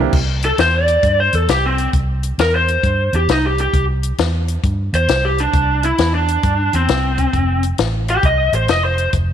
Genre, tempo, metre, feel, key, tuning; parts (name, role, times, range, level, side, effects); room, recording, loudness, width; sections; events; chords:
electric blues shuffle; 133 BPM; 4/4; swing 66% on 8ths; C mixolydian; A4 = 440 Hz
vintage muted fingered electric bass; bass; 0.0-9.3 s; F1 to G2; -18 LUFS; right 1 dB
compact cocktail drum kit; drums; 0.1-9.3 s; crash cymbal, hi-hat, kick drum, snare drum; -20 LUFS; left 4 dB
lead guitar through a small cranked amp; melody; 0.5-9.1 s; C4 to Eb5; -17 LUFS; equal; overdrive
light reverb, studio reverb; 1960s-style stereo; -14 LUFS; side -9 dB against mid
0.1-9.3 A section
0.1 C; 7.3 F